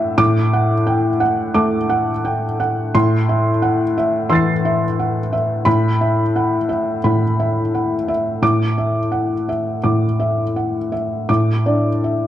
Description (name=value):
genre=neoclassical minimalist piano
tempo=87 BPM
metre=4/4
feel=rubato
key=unclear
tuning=A4 = 441 Hz
part: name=felt-muted upright piano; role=solo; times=0.0-12.3 s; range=A2 to C7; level=-15 LUFS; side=equal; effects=none
room=light reverb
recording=dark, warm production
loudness=-15 LUFS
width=side -12 dB against mid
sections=0.0-12.3 A section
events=none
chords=0.2 D/A; 2.9 Am; 5.7 Asus2; 8.4 Dadd9/A; 11.3 D5/A